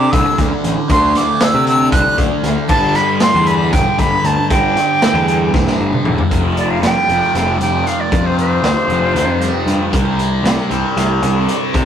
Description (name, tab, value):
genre	psychedelic rock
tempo	232 BPM (eighths)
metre	7/8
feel	straight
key	unclear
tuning	A4 = 440 Hz
part	breathy bright jazz flute	melody	0.0-9.9 s	C5 to F#6	-16 LUFS	right 1 dB	none
part	thick fuzz guitar	riff	0.0-11.8 s	F2 to D4	-18 LUFS	equal	distortion, phaser
part	fuzz picked electric bass	bass	0.0-11.8 s	E1 to C3	-18 LUFS	equal	overdrive
part	raw garage drum kit	drums	0.1-11.8 s	crash cymbal, hi-hat, kick drum, snare drum, toms	-18 LUFS	equal	none
part	tanpura	drone	6.3-11.8 s	G2 to G3	-24 LUFS	left 3 dB	none
room	moderate studio reverb, RT60 0.5 s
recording	rough rehearsal-room recording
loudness	-12 LUFS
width	side -9 dB against mid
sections	0.0-6.3 A section; 6.3-11.8 B section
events	drum fill 5.5-6.3; flute solo 6.3-11.8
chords	0.0 D5; 2.7 G5; 6.3 F5; 9.9 Csus2